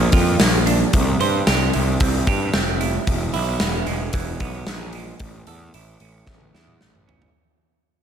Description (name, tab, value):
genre	quiet-loud alternative rock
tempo	112 BPM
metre	4/4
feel	straight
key	unclear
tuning	A4 = 440 Hz
part	semi-hollow electric guitar	arpeggios	0.0-7.3 s	E2 to C5	-25 LUFS	right 13 dB	spring reverb
part	fuzz picked electric bass	bass	0.0-7.3 s	E1 to G2	-22 LUFS	equal	overdrive
part	big rock drum kit	drums	0.1-7.3 s	hi-hat, kick drum, snare drum, toms	-20 LUFS	left 1 dB	none
room	light reverb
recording	none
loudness	-17 LUFS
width	side -8 dB against mid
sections	0.0-7.3 A section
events	fade-out 0.0-7.3; drum fill 6.3-7.3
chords	0.0 Bb; 0.9 C; 3.1 E; 5.2 A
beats	0.39 | 0.92 1.46 1.99 2.53 | 3.06 3.60 4.13 4.67 | 5.20 5.74 6.27 6.81